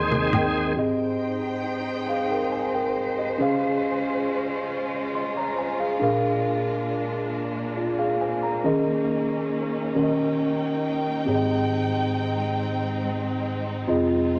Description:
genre	slow gospel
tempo	46 BPM (dotted quarters)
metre	6/8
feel	straight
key	Ab major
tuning	A4 = 438 Hz
part	mellow tine electric piano	accompaniment	0.0-14.4 s	Ab2 to C6	-27 LUFS	equal	none
part	bright tonewheel organ	sustained chords	0.0-0.8 s	Eb3 to Ab4	-26 LUFS	equal	fast rotary speaker, overdrive, chorus vibrato
part	fingered electric bass	bass	0.0-0.7, 11.3-14.4 s	F1 to Eb2	-32 LUFS	equal	none
part	toms	drums	0.1-0.5 s	none	-30 LUFS	equal	none
part	warm studio string section	sustained chords	0.8-14.4 s	Ab3 to G5	-31 LUFS	equal	none
room	wet large studio reverb, RT60 1.1 s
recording	none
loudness	-25 LUFS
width	mono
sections	0.8-14.4 A section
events	drum fill 0.0-0.8; tine electric piano fill 0.0-0.8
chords	0.0 Ab; 0.8 Abmaj7; 3.4 Dbmaj7; 6.0 Bb7; 8.6 Eb7sus4; 10.0 Eb7; 11.3 Abmaj7; 13.9 Fm7

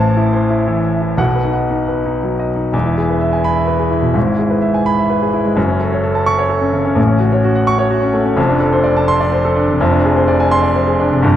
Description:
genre	classical, virtuoso piano study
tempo	127 BPM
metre	3/4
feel	rubato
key	E major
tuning	A4 = 440 Hz
part	warm baby grand piano	solo	0.0-11.4 s	E1 to C#6	-12 LUFS	equal	none
room	moderate concert hall reverb, RT60 2.3 s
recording	dark, warm production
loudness	-12 LUFS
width	side -11 dB against mid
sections	0.0-2.7 A section; 2.7-11.4 B section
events	none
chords	0.0 Am; 1.2 B; 2.7 E; 4.2 E/G#; 5.6 F#m; 7.0 F#m/A; 8.4 Dm7/F; 9.8 Dm7b5/F

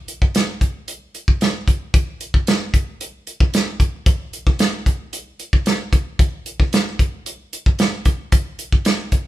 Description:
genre	blues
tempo	113 BPM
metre	4/4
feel	straight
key	none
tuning	none
part	warm soul drum kit	drums	0.1-9.2 s	hi-hat, kick drum, snare drum	-16 LUFS	equal	none
room	light reverb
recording	band playing live in one room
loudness	-17 LUFS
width	side -15 dB against mid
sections	0.0-9.3 A section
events	none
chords	none

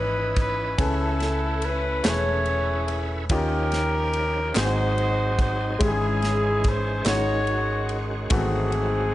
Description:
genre	slow gospel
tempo	48 BPM (dotted quarters)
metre	6/8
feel	straight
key	unclear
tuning	A4 = 441 Hz
part	warm horn section	melody	0.0-9.1 s	B#3 to C#5	-26 LUFS	equal	none
part	clear grand piano	accompaniment	0.0-9.1 s	G#2 to G#5	-29 LUFS	left 2 dB	none
part	bright tonewheel organ	sustained chords	0.0-9.1 s	D#3 to D#5	-33 LUFS	right 2 dB	fast rotary speaker, overdrive, chorus vibrato
part	hollow-body short-scale fingered electric bass	bass	0.0-9.1 s	E1 to D#2	-27 LUFS	equal	none
part	modern studio drum kit	drums	0.4-8.9 s	kick drum, ride cymbal, snare drum	-27 LUFS	equal	none
part	group handclap	percussion	2.0-7.4 s	none	-34 LUFS	right 4 dB	none
room	light reverb, small room ambience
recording	nothing above 10.7 kHz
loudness	-21 LUFS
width	side -15 dB against mid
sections	0.0-9.1 A section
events	none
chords	0.0 C#m9; 0.8 Amaj9/C#; 3.3 D#9; 4.5 G#7; 5.8 C#m/G#; 7.1 G#7sus4; 8.3 G#7b9b13

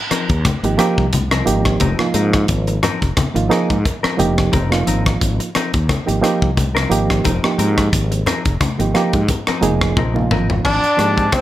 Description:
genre	electric jazz fusion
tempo	88 BPM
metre	4/4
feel	swing 55% on 16ths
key	Ab lydian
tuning	A4 = 440 Hz
part	mellow electric guitar	stabs	0.1-11.4 s	F3 to Bb4	-24 LUFS	left 5 dB	wide subtle chorus
part	fretless electric bass	bass	0.1-11.3 s	F1 to Ab2	-19 LUFS	equal	none
part	tight funk drum kit	drums	0.1-11.4 s	crash cymbal, hi-hat, kick drum, rim click, toms	-20 LUFS	equal	none
part	reed electric piano	accompaniment	0.3-11.4 s	F3 to Bb4	-19 LUFS	right 4 dB	none
part	congas	percussion	0.5-11.4 s	none	-24 LUFS	left 2 dB	none
part	breathy tenor saxophone	melody	10.7-11.4 s	C4 to D4	-16 LUFS	left 2 dB	slapback echo
part	reedy silver concert flute	second line	10.7-11.4 s	C5 to D5	-23 LUFS	right 2 dB	none
room	light reverb, small room ambience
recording	none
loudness	-14 LUFS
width	side -14 dB against mid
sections	0.0-10.6 A section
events	drum fill 10.0-10.6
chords	0.0 Ab69; 10.6 Ab6

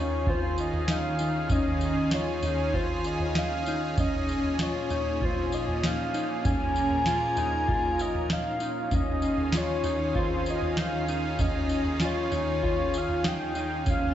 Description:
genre	dream pop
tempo	97 BPM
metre	4/4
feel	straight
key	unclear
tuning	A4 = 440 Hz
part	soft octave-layered synth lead	melody	0.0-14.1 s	C5 to Ab5	-31 LUFS	left 1 dB	chorus, tape echo
part	lush unison pad	sustained chords	0.0-14.1 s	Eb2 to C5	-32 LUFS	right 1 dB	chorus
part	mellow electric guitar	arpeggios	0.0-14.1 s	Db4 to F4	-31 LUFS	left 1 dB	ensemble chorus, tape echo
part	booming analog drum machine	drums	0.3-14.0 s	kick drum, snare drum, tambourine, toms	-29 LUFS	right 1 dB	none
room	light reverb, digital ambience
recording	played on a big sound system in a bare room, stone room reverb, nothing above 7.8 kHz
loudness	-25 LUFS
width	side -11 dB against mid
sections	0.0-14.1 A section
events	none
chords	0.0 Eb7sus4; 4.0 Bbm7; 8.9 Eb7sus4

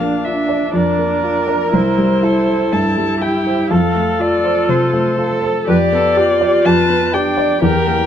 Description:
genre	quick classical-period movement for piano quartet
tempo	122 BPM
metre	4/4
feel	straight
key	unclear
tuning	A4 = 440 Hz
part	muted violin	melody	0.0-8.1 s	A4 to A5	-18 LUFS	left 4 dB	none
part	muted cello	second line	0.0-8.1 s	D4 to Bb4	-20 LUFS	right 4 dB	none
part	dark baby grand piano	accompaniment	0.0-8.1 s	Bb1 to D5	-17 LUFS	equal	none
part	muted viola	accompaniment	0.0-8.1 s	D4 to D5	-21 LUFS	right 2 dB	none
room	moderate studio reverb, RT60 0.8 s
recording	dark, warm production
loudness	-13 LUFS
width	side -9 dB against mid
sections	0.0-8.1 A section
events	none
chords	0.0 Bb; 1.7 C; 3.7 F; 5.7 G7/F

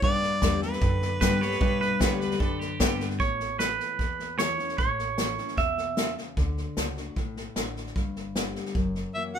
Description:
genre	honky-tonk and classic country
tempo	151 BPM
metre	4/4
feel	straight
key	A mixolydian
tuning	A4 = 441 Hz
part	mellow harmonica	melody	0.0-2.8, 9.1-9.4 s	B4 to F#5	-29 LUFS	right 1 dB	none
part	bright concert grand piano	accompaniment	0.0-3.1 s	D4 to B4	-36 LUFS	right 6 dB	none
part	picked steel-string acoustic guitar	accompaniment	0.0-9.4 s	E2 to G4	-32 LUFS	left 5 dB	none
part	upright bass	bass	0.0-9.0 s	F#1 to B2	-34 LUFS	equal	none
part	unplugged drum kit	drums	0.0-9.0 s	hi-hat, kick drum, snare drum	-28 LUFS	equal	none
part	twangy electric guitar	second line	1.2-6.1 s	G4 to E5	-29 LUFS	right 5 dB	none
room	moderate studio reverb, RT60 0.7 s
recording	minimal, uncompressed stereo recording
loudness	-25 LUFS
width	side -8 dB against mid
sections	0.0-3.2 A section; 3.2-9.4 B section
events	clean electric guitar solo 3.2-9.4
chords	0.0 G; 3.2 A; 6.4 D; 8.0 G; 8.8 F#7

